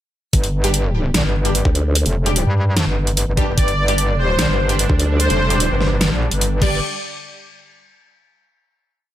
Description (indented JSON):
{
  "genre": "heavy wobble dubstep",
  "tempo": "148 BPM",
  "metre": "4/4",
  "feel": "half-time",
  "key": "unclear",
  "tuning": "A4 = 440 Hz",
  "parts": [
    { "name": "metallic wobble bass", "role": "bass", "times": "0.3-6.8 s", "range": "F1 to G2", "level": "-18 LUFS", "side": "equal", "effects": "chorus, overdrive" },
    { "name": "dubstep drum kit", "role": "drums", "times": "0.3-6.7 s", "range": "crash cymbal, hi-hat, snare drum", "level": "-21 LUFS", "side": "equal", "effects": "overdrive" },
    { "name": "electronic kick drum", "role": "drums", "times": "0.3-6.7 s", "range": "none", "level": "-18 LUFS", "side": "equal", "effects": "overdrive" },
    { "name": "orchestra-hit-like synth stab", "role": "stabs", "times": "0.6-6.8 s", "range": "G3 to G4", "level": "-26 LUFS", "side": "left 1 dB", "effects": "built-in reverb, phaser, digital delay" },
    { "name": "vowel-sweep wobble bass", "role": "bass", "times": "1.7-2.0, 4.9-5.3 s", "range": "D2", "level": "-16 LUFS", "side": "equal", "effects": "chorus, overdrive" },
    { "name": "soft supersaw", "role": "melody", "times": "3.6-6.8 s", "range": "C5 to D5", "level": "-22 LUFS", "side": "left 1 dB", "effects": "digital delay" },
    { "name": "lush unison pad", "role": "sustained chords", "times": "4.0-6.8 s", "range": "D3 to D4", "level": "-26 LUFS", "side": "right 2 dB", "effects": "chorus, phaser, sidechain pumping" }
  ],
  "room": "little or no reverb",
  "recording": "none",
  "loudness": "-15 LUFS",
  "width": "side -12 dB against mid",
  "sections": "0.3-6.8 drop; 6.8-8.4 final hit",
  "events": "drop 0.3-6.8",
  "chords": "0.3 G5; 6.8 N.C."
}